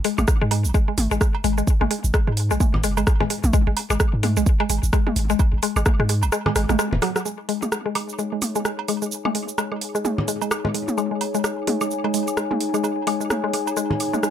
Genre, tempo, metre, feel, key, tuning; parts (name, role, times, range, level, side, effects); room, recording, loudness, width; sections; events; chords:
minimal techno; 129 BPM; 4/4; swing 58% on 16ths; A4 = 440 Hz
mallet-like synth pluck; riff; 0.0-14.3 s; F#3 to G#3; -25 LUFS; left 2 dB; chorus, phaser, sidechain pumping, ping-pong delay
punchy sub bass; bass; 0.0-7.0 s; D#1 to G#2; -22 LUFS; equal; sidechain pumping
house drum kit; drums; 0.0-14.3 s; cabasa, hi-hat, rim click; -27 LUFS; right 2 dB
electronic toms, woodblock, cowbell and congas; percussion; 0.2-14.2 s; -28 LUFS; right 1 dB; tape echo
electronic kick drum; drums; 0.3-6.0 s; -19 LUFS; equal
warbly tape-like pad; texture; 7.7-14.3 s; D#4 to G#5; -27 LUFS; left 2 dB; chorus, built-in reverb, sidechain pumping
light reverb; -19 LUFS; side -10 dB against mid
0.0-7.3 A section; 7.3-14.3 B section
kick drops out 6.3-7.3; drum fill 6.3-7.3
0.0 G#5; 7.3 G#sus4